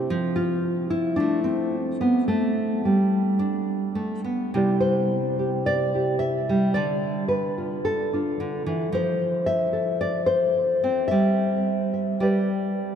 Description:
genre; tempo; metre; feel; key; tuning
folk, solo fingerstyle acoustic guitar; 110 BPM; 4/4; rubato; C major; A4 = 440 Hz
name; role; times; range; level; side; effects
nylon-string guitar; solo; 0.0-13.0 s; C3 to E5; -21 LUFS; equal; none
room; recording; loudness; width
wet cathedral reverb, RT60 5.4 s; in a vast, echoing space; -21 LUFS; side -8 dB against mid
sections
0.0-4.5 A section; 4.5-13.0 A section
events
none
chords
0.1 F; 2.3 G; 4.5 Cadd9; 6.8 Dm; 8.9 F; 11.1 Em/G; 12.2 G

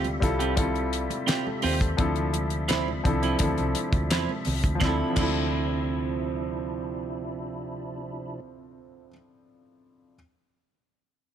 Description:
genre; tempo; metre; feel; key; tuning
lush 1970s-style soul; 85 BPM; 4/4; straight; D minor; A4 = 440 Hz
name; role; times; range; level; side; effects
warm grand piano; accompaniment; 0.0-10.2 s; F3 to C5; -30 LUFS; left 2 dB; none
percussive tonewheel organ; sustained chords; 0.0-8.4 s; C3 to E5; -37 LUFS; equal; slow rotary speaker, chorus vibrato
clean electric guitar; riff; 0.0-9.2 s; F3 to G4; -31 LUFS; right 9 dB; vibrato effect
hollow-body short-scale fingered electric bass; bass; 0.0-9.1 s; C2 to E2; -30 LUFS; equal; none
damped 70s drum kit; drums; 0.0-5.4 s; crash cymbal, hi-hat, kick drum, snare drum; -28 LUFS; equal; none
congas; percussion; 0.1-5.4 s; none; -38 LUFS; right 4 dB; none
group handclap; percussion; 1.3-5.4 s; none; -39 LUFS; left 4 dB; none
room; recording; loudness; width
small room ambience; none; -24 LUFS; side -9 dB against mid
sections
0.0-4.8 A section; 4.8-7.6 B section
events
none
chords
0.0 Dm11; 2.0 Dm9

